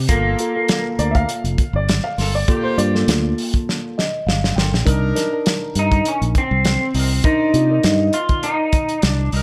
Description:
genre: straight-eighth soul blues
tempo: 101 BPM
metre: 4/4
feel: swing 54% on 16ths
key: G minor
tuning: A4 = 442 Hz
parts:
  - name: fingered electric bass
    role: bass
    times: 0.0-9.4 s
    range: F1 to C3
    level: -22 LUFS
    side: equal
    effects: none
  - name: electric guitar through a small old amp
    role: melody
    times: 0.1-1.2, 5.8-9.3 s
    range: Bb3 to F4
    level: -22 LUFS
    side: equal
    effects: lush chorus, slapback echo
  - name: mellow tine electric piano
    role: accompaniment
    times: 0.1-8.8 s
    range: Bb3 to G5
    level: -26 LUFS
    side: equal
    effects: phaser
  - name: warm horn section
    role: sustained chords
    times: 0.1-9.4 s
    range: Bb3 to D5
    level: -33 LUFS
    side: equal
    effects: none
  - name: warm soul drum kit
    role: drums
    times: 0.1-9.4 s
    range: hi-hat, kick drum, snare drum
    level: -22 LUFS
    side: equal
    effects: none
  - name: warm upright piano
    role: second line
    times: 1.0-3.4 s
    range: C5 to F5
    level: -27 LUFS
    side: equal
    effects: none
room: light reverb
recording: none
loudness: -18 LUFS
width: mono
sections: 0.0-9.4 A section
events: drum fill 3.7-4.9; tine electric piano fill 3.7-4.9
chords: 0.1 Gm9; 4.9 Cm9

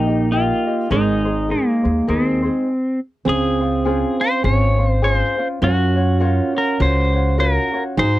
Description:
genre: Hawaiian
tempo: 102 BPM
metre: 4/4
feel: swing 59% on 8ths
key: Ab major, Db major from 3.3 s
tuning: A4 = 438 Hz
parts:
  - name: pedal steel guitar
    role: melody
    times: 0.0-8.2 s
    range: Bb3 to Db5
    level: -20 LUFS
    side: equal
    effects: none
  - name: fingerpicked steel-string acoustic guitar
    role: second line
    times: 0.0-8.2 s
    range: Ab3 to Eb4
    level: -23 LUFS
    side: right 5 dB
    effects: none
  - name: ukulele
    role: accompaniment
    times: 0.0-8.2 s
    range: Db4 to Eb5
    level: -24 LUFS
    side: left 4 dB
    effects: none
  - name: upright bass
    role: bass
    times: 0.0-8.2 s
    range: Ab1 to Ab2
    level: -19 LUFS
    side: equal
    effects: none
room: little or no reverb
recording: dry, close 1970s-style studio recording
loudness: -16 LUFS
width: side -16 dB against mid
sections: 0.0-3.3 A section; 3.3-8.2 B section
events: stop 2.7-3.3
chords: 0.0 Eb; 0.9 Abadd9; 3.3 Dbmaj7; 5.6 Gbmaj7

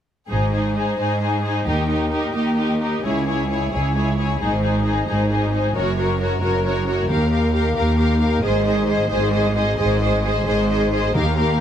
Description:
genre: cinematic, heroic adventure film score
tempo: 89 BPM (dotted quarters)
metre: 6/8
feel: straight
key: Ab major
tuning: A4 = 440 Hz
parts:
  - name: warm symphonic violin section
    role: melody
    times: 0.3-11.6 s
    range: Bb4 to F5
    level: -28 LUFS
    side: left 2 dB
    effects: none
  - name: warm symphonic violin section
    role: second line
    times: 0.3-11.6 s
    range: G4 to C5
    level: -25 LUFS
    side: left 4 dB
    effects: none
  - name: rich symphonic viola section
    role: accompaniment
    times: 0.3-11.6 s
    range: Eb4 to Ab4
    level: -25 LUFS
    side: right 1 dB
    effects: none
  - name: rich symphonic cello section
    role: bass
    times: 0.3-11.6 s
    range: Db2 to Ab2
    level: -22 LUFS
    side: right 1 dB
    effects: none
  - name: rich symphonic double bass section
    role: bass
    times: 0.3-11.6 s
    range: Gb1 to Eb2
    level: -24 LUFS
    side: right 1 dB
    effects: none
  - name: timpani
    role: percussion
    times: 7.1-7.7, 11.2-11.6 s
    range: Eb3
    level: -26 LUFS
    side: left 1 dB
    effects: none
room: light reverb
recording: close, detailed microphones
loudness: -18 LUFS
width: side -9 dB against mid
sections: 0.3-3.1 A section; 3.1-11.6 B section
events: build-up 3.1-11.6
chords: 0.3 Ab; 1.7 Eb; 3.1 Dbm; 4.4 Ab; 5.8 Gb; 7.1 Ebadd9; 8.4 Ab

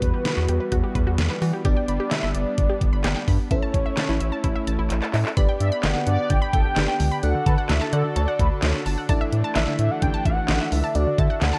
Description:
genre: synth-pop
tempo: 129 BPM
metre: 4/4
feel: straight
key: unclear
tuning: A4 = 440 Hz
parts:
  - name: unison lead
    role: melody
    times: 0.0-11.6 s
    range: B4 to G5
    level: -30 LUFS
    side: equal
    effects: slapback echo
  - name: FM electric piano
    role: accompaniment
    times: 0.0-11.6 s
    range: G3 to D5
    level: -34 LUFS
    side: equal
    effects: chorus
  - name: brassy analog pad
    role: sustained chords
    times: 0.0-11.6 s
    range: D3 to A4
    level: -34 LUFS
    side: equal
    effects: chorus
  - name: round analog bass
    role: bass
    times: 0.0-11.5 s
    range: G1 to E3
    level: -26 LUFS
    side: equal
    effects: none
  - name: pop drum kit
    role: drums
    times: 0.0-11.5 s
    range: handclaps, hi-hat, kick drum, snare drum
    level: -26 LUFS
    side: equal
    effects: none
  - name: unison pluck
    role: arpeggios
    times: 0.1-11.6 s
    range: D3 to B5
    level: -34 LUFS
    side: equal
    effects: slapback echo
  - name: mellow synth brass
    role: second line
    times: 5.6-8.5 s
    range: A4 to E5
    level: -33 LUFS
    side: equal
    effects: chorus, phaser, slapback echo
room: little or no reverb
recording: none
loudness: -22 LUFS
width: mono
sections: 0.0-5.4 A section; 5.4-11.6 B section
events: drum fill 4.9-5.4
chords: 0.0 Emadd9; 1.6 G; 3.5 A; 5.4 G; 7.2 D; 9.1 Asus4; 11.0 D

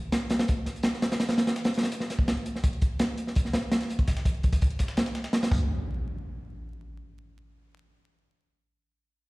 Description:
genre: drum and bass, jungle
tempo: 167 BPM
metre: 4/4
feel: straight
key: unclear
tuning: A4 = 440 Hz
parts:
  - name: crunchy breakbeat drum kit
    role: drums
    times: 0.1-5.6 s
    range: hi-hat, kick drum, snare drum, splash cymbal, toms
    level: -25 LUFS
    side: equal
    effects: none
  - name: dusty soul sampler-style drum kit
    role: drums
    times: 0.1-5.4 s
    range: hi-hat, snare drum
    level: -43 LUFS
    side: left 1 dB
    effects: high-pass filter on hats, high-pass filter on snare, high-pass filter on room
  - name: saturated sub bass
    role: bass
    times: 5.5-5.7 s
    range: D2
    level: -28 LUFS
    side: equal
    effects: tube saturation
  - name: impact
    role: sound effects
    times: 5.5-7.0 s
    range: none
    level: -35 LUFS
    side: equal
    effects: none
room: light reverb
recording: played on a big sound system in a bare room, stone room reverb, vinyl crackle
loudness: -25 LUFS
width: side -22 dB against mid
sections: 0.0-5.5 A section; 5.5-6.9 B section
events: none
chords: none

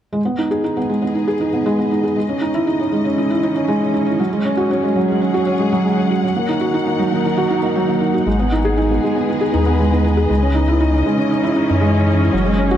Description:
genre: piano and strings electronica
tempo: 118 BPM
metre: 4/4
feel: straight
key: G# minor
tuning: A4 = 441 Hz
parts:
  - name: warm studio string section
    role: sustained chords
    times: 0.1-12.8 s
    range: C#3 to F#5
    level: -24 LUFS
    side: left 2 dB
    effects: none
  - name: felt-muted upright piano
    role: riff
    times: 0.1-12.8 s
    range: F#3 to G#4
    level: -16 LUFS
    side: right 1 dB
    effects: tape echo
  - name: warm sub bass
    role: bass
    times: 8.3-12.8 s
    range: F#1 to F#2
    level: -17 LUFS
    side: left 1 dB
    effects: none
room: moderate huge ambient reverb, RT60 8.9 s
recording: dark, warm production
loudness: -15 LUFS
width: side -10 dB against mid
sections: 0.1-12.8 A section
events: fade-in on string section 0.1-12.8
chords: 0.1 G#m; 2.2 C#madd9; 4.2 F#sus2; 6.2 D#m; 8.3 G#m; 10.3 C#madd9

